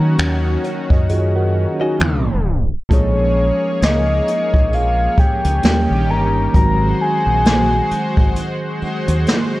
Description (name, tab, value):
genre	contemporary R&B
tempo	66 BPM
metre	4/4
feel	swing 58% on 16ths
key	Bb minor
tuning	A4 = 442 Hz
part	soft octave-layered synth lead	melody	0.0-8.8 s	Db5 to Bb5	-20 LUFS	left 1 dB	chorus, ping-pong delay
part	mellow tine electric piano	accompaniment	0.0-9.6 s	Eb3 to A5	-22 LUFS	right 1 dB	medium stereo tremolo
part	lush unison pad	sustained chords	0.0-9.6 s	Eb3 to Db5	-24 LUFS	left 1 dB	chorus
part	deep dub fingered electric bass	bass	0.0-9.2 s	G1 to Eb3	-18 LUFS	equal	none
part	jazz brush drum kit	drums	0.2-9.5 s	finger snaps, hi-hat, kick drum, snare drum	-16 LUFS	equal	none
part	direct-recorded clean electric guitar	arpeggios	1.8-2.9 s	C4 to Eb5	-28 LUFS	left 3 dB	lush chorus
room	light reverb, small room ambience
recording	worn, warbling old tape, cassette tape, warbly pitch drift, tape stop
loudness	-14 LUFS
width	side -18 dB against mid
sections	0.0-2.9 A section; 2.9-9.6 B section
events	tine electric piano fill 0.2-2.9; tape stop 2.0-2.9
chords	0.0 Ebm7; 2.0 F7; 2.9 Bbm7; 5.6 Eb7; 6.5 Ab7